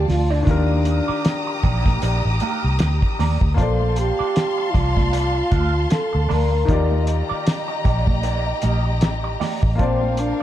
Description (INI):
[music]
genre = lush 1970s-style soul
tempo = 77 BPM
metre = 4/4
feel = swing 58% on 16ths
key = unclear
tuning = A4 = 440 Hz
[part]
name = mellow French horn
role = melody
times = 0.0-10.4 s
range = C4 to Bb4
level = -24 LUFS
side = equal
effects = none
[part]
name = warm studio string section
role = second line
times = 0.0-10.4 s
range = D4 to Eb6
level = -27 LUFS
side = left 2 dB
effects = tape echo
[part]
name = clear baby grand piano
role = accompaniment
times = 0.0-10.4 s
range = Eb3 to A5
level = -29 LUFS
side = left 5 dB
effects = none
[part]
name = vintage muted fingered electric bass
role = bass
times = 0.0-10.3 s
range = A1 to Eb2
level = -20 LUFS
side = equal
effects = none
[part]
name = cloth-damped thuddy drum kit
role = drums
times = 0.1-10.4 s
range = hi-hat, kick drum, snare drum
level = -21 LUFS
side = equal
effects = none
[part]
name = congas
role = percussion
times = 0.1-10.4 s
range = none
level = -31 LUFS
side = right 6 dB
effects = none
[part]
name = electric guitar through a small old amp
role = riff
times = 0.3-10.4 s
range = Bb3 to F5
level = -31 LUFS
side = right 8 dB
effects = wah
[sound]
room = light reverb, small room ambience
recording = dark, warm production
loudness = -17 LUFS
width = side -12 dB against mid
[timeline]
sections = 0.0-10.4 A section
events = none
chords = 0.5 Ebmaj7; 3.6 Bbmaj7; 6.7 Ebmaj7; 9.8 Bbmaj7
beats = | 0.47 1.25 2.03 2.80 | 3.58 4.36 5.13 5.91 | 6.69 7.47 8.24 9.02 | 9.80